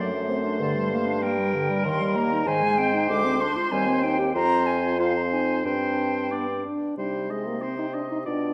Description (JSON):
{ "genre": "quick classical-period movement for wind quintet", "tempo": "94 BPM", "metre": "2/4", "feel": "straight", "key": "C minor", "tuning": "A4 = 440 Hz", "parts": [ { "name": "concert flute", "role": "melody", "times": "0.0-8.5 s", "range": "C5 to D6", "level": "-31 LUFS", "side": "equal", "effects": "none" }, { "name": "clear oboe", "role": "second line", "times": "0.0-8.5 s", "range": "Bb4 to Eb5", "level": "-33 LUFS", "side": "equal", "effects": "none" }, { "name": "mellow clarinet", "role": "accompaniment", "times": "0.0-8.5 s", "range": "D3 to G4", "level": "-32 LUFS", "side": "equal", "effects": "none" }, { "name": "warm French horn", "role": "accompaniment", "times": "0.0-8.5 s", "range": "G3 to Eb4", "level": "-32 LUFS", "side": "equal", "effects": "none" }, { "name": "mellow bassoon", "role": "bass", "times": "0.0-8.5 s", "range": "D2 to C3", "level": "-31 LUFS", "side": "equal", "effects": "none" } ], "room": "wet scoring stage reverb, RT60 1.7 s", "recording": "none", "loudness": "-25 LUFS", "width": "mono", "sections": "0.0-7.0 A section; 7.0-8.5 B section", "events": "none", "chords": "0.0 D7/F#; 0.6 Gm; 1.8 Eb; 2.5 Ab; 3.1 Dm7b5; 3.7 Cm/Eb; 4.3 F5; 5.7 Gsus4; 6.3 G; 7.0 Cm" }